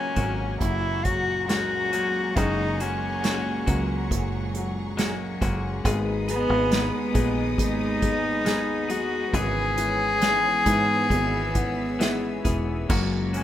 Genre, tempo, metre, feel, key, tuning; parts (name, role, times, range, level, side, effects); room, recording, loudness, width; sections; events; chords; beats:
pop ballad; 68 BPM; 4/4; straight; A4 = 440 Hz
rich cello; melody; 0.0-13.4 s; B3 to G#4; -25 LUFS; left 1 dB
rich chamber cello section; second line; 0.0-13.4 s; C#2 to B3; -31 LUFS; right 2 dB; tape echo
warm upright piano; accompaniment; 0.0-13.4 s; C#3 to F#5; -33 LUFS; left 5 dB
clear symphonic string section; sustained chords; 0.0-12.9 s; G#4 to E6; -38 LUFS; equal
clean electric guitar; arpeggios; 0.0-13.4 s; F#2 to G#4; -33 LUFS; left 6 dB
fingered electric bass; bass; 0.2-13.4 s; E1 to G#2; -29 LUFS; right 1 dB
unplugged drum kit; drums; 0.2-13.4 s; crash cymbal, hi-hat, kick drum, snare drum; -27 LUFS; right 1 dB
small room ambience; rough home demo mix; -22 LUFS; side -11 dB against mid
0.0-12.9 A section
upright piano fill 11.1-12.9
0.0 F#add9; 5.9 G#m; 9.3 C#m7/G#; 12.9 F#add9
0.61 1.49 | 2.37 3.24 4.11 4.98 | 5.85 6.72 7.59 8.46 | 9.34 10.22 11.11 12.00 | 12.90